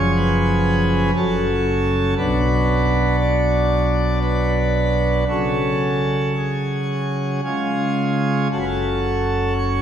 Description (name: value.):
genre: classical, chorale-style piece for pipe organ.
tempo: 55-60 BPM.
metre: 3/4.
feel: rubato.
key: unclear.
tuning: A4 = 440 Hz.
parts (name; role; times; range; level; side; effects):
pipe organ, plenum; solo; 0.0-9.8 s; F#1 to D5; -17 LUFS; equal; none.
room: wet church reverb, RT60 2.6 s.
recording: recorded in a church or concert hall, vinyl crackle.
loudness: -17 LUFS.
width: side -9 dB against mid.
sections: 0.0-9.8 A section.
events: none.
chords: 0.0 C#/F#; 1.1 F#m; 2.2 Bm; 5.3 C#sus4; 7.4 C#; 8.5 F#m.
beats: 0.15 1.15 | 2.17 3.19 4.21 | 5.28 6.36 7.44 | 8.51 9.55.